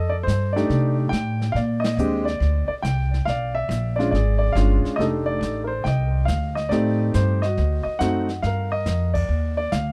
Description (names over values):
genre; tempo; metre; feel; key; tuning
jazz piano trio; 140 BPM; 4/4; swing 67% on 8ths; F mixolydian; A4 = 439 Hz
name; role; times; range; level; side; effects
warm baby grand piano; melody; 0.0-9.9 s; Ab3 to G5; -26 LUFS; equal; tape echo
upright bass; bass; 0.0-9.9 s; F1 to C3; -24 LUFS; equal; none
jazz brush drum kit; drums; 0.3-9.9 s; brushed snare drum, crash cymbal, hi-hat, kick drum, ride cymbal, snare drum; -34 LUFS; equal; none
room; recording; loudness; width
small room ambience; dry, close 1970s-style studio recording; -22 LUFS; mono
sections
0.0-9.9 A section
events
band accent 1.8, 9.1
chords
0.0 F13; 1.6 Bb69; 3.3 Bdim7; 5.0 F13; 6.7 Am7b5; 7.6 D7b9; 8.4 Gm7